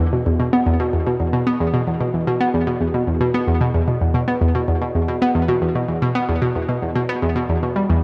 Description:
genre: ambient.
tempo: 112 BPM.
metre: 4/4.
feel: straight.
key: unclear.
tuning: A4 = 440 Hz.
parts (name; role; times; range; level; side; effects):
analog pluck; solo; 0.0-8.0 s; E2 to B3; -19 LUFS; equal; chorus, tape echo.
room: wet plate reverb, RT60 3.0 s.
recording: dreamy mix soaked in reverb.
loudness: -20 LUFS.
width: mono.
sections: 0.0-8.0 A section.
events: none.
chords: none.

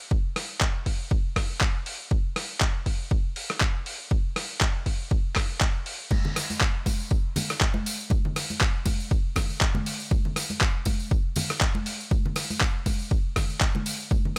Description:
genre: house.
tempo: 120 BPM.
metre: 4/4.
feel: swing 55% on 16ths.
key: none.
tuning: none.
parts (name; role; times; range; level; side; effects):
electronic kick drum; drums; 0.1-14.2 s; none; -27 LUFS; equal; none.
dusty soul sampler-style drum kit; drums; 0.4-14.4 s; crash cymbal, handclaps, hi-hat, rim click; -31 LUFS; equal; overdrive, sidechain pumping on hats, sidechain pumping on cymbals.
congas and tambourine; percussion; 6.1-14.4 s; none; -34 LUFS; equal; sidechain pumping on perc.
room: digital ambience.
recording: dry, gritty hardware recording.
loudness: -27 LUFS.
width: mono.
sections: 0.0-14.4 A section.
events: none.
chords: none.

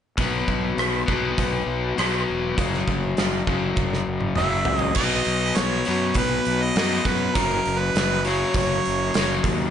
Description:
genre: classic rock.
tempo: 101 BPM.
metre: 4/4.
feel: straight.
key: B major.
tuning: A4 = 440 Hz.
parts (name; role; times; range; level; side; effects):
overdriven electric guitar; riff; 0.2-9.7 s; F#2 to B3; -24 LUFS; left 5 dB; none.
fuzz fingered electric bass; bass; 0.2-9.7 s; E1 to F#2; -28 LUFS; right 1 dB; overdrive.
gated 80s drum kit; drums; 0.2-9.6 s; crash cymbal, hi-hat, kick drum, rim click, snare drum, toms; -25 LUFS; right 1 dB; none.
clear harmonica; melody; 4.4-9.4 s; A#4 to E5; -25 LUFS; right 5 dB; none.
room: light reverb, studio ambience.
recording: nothing above 10.5 kHz.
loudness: -20 LUFS.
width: side -9 dB against mid.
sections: 0.2-5.0 A section; 5.0-9.7 B section.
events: drum fill 3.8-5.0.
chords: 0.2 B5; 2.6 F#5; 5.0 B; 7.4 F#5.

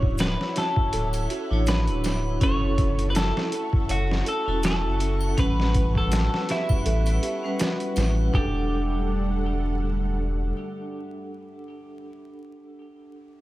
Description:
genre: trip hop.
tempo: 81 BPM.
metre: 4/4.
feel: swing 56% on 16ths.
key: E dorian.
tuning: A4 = 440 Hz.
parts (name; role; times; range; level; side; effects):
twelve-string electric guitar; melody; 0.0-12.3 s; E4 to C#5; -30 LUFS; equal; spring reverb, tape echo.
vibraphone with hard mallets; accompaniment; 0.0-13.4 s; G3 to F#5; -32 LUFS; equal; tremolo.
string machine, cellos; sustained chords; 0.0-12.1 s; G3 to C#6; -35 LUFS; right 1 dB; ensemble chorus.
music box; arpeggios; 0.0-8.7 s; C#4 to C#5; -34 LUFS; right 2 dB; tape echo.
warm sub bass; bass; 0.0-10.5 s; D1 to A1; -25 LUFS; equal; none.
trip hop sampler-style drum kit; drums; 0.0-8.5 s; hi-hat, kick drum, snare drum; -25 LUFS; equal; small room ambience.
maracas and triangle; percussion; 0.2-8.1 s; none; -44 LUFS; left 1 dB; none.
room: small room ambience.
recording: vinyl crackle.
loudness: -22 LUFS.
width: side -16 dB against mid.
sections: 0.0-8.3 A section; 8.3-11.3 B section.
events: none.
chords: 0.0 Dmaj9; 2.4 F#m7; 5.4 A13; 8.3 Em11.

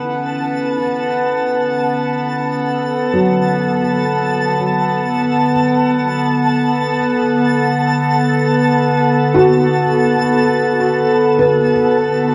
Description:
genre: ambient.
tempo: free time.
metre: none.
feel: none.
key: B minor.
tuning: A4 = 440 Hz.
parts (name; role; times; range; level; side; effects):
warbly tape-like pad; sustained chords; 0.0-12.3 s; D3 to F#5; -18 LUFS; equal; chorus, built-in reverb, shimmer reverb.
felt-muted upright piano; arpeggios; 0.0-12.3 s; E3 to B4; -21 LUFS; equal; tape echo, shimmer reverb.
pedal harmonium; drone; 0.0-12.3 s; B3 to B4; -23 LUFS; equal; none.
twinkling granular texture; texture; 0.0-12.3 s; A5; -23 LUFS; equal; built-in reverb, shimmer reverb.
room: wet huge ambient reverb, RT60 9.0 s.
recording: worn, warbling old tape, cassette tape, warbly pitch drift.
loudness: -15 LUFS.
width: mono.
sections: 0.0-12.3 A section.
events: none.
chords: 0.0 Bm7.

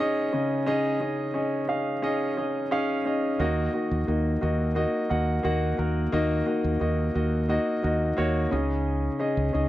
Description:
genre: piano-driven pop.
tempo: 88 BPM.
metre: 4/4.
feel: straight.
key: Eb minor.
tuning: A4 = 439 Hz.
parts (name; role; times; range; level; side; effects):
warm concert grand piano; accompaniment; 0.0-9.7 s; Db3 to Gb5; -25 LUFS; equal; none.
mellow fretless electric bass; bass; 3.4-9.7 s; Db2 to Eb2; -27 LUFS; right 1 dB; none.
room: little or no reverb.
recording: dry, close 1970s-style studio recording.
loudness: -24 LUFS.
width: side -15 dB against mid.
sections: 0.0-9.7 A section.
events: none.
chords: 0.0 Dbsus2; 3.4 Ebm; 8.5 Dbsus2.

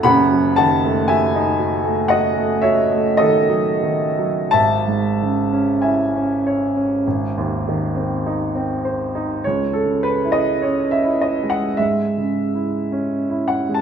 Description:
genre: classical, romantic nocturne for solo piano.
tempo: 42-59 BPM.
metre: 4/4.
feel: rubato.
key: C# minor.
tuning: A4 = 440 Hz.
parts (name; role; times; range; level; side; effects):
warm baby grand piano; solo; 0.0-13.8 s; F#1 to B5; -16 LUFS; right 1 dB; none.
room: wet recital hall reverb, RT60 1.6 s.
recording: minimal, uncompressed stereo recording.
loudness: -16 LUFS.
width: side -7 dB against mid.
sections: 0.0-9.4 A section; 9.4-13.8 B section.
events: none.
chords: 0.0 D#dim/F#; 4.5 C#m/G#; 7.1 G#; 9.4 C#m.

